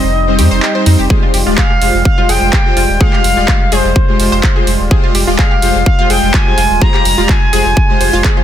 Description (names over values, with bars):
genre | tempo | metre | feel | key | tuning
progressive house | 126 BPM | 4/4 | straight | F minor | A4 = 445 Hz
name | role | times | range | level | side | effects
expressive portamento lead | melody | 0.0-8.2 s | C5 to Bb5 | -16 LUFS | left 1 dB | lush chorus, sidechain pumping, ping-pong delay
warm analog pad | sustained chords | 0.0-8.4 s | G3 to F4 | -22 LUFS | right 1 dB | chorus, sidechain pumping
soft supersaw | stabs | 0.0-8.4 s | G3 to D5 | -17 LUFS | left 1 dB | wide subtle chorus, cassette tape, sidechain pumping, ping-pong delay
round analog bass | bass | 0.0-8.2 s | Eb1 to F2 | -14 LUFS | equal | sidechain pumping
analog pluck | arpeggios | 0.4-8.4 s | Eb4 to C6 | -21 LUFS | equal | chorus, sidechain pumping, ping-pong delay
big-room dance drum kit | drums | 0.4-8.3 s | handclaps, hi-hat | -19 LUFS | right 2 dB | overdrive
electronic kick drum | drums | 1.1-8.3 s | none | -11 LUFS | equal | overdrive
room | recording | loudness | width
light reverb | dense, heavily limited modern master | -9 LUFS | side -10 dB against mid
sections
0.0-8.4 A section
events
break 0.0-1.1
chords
0.0 Cm; 1.1 Fmadd9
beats
0.15 0.62 | 1.10 1.58 2.05 2.53 | 3.01 3.48 3.96 4.43 | 4.91 5.39 5.86 6.34 | 6.82 7.29 7.77 8.24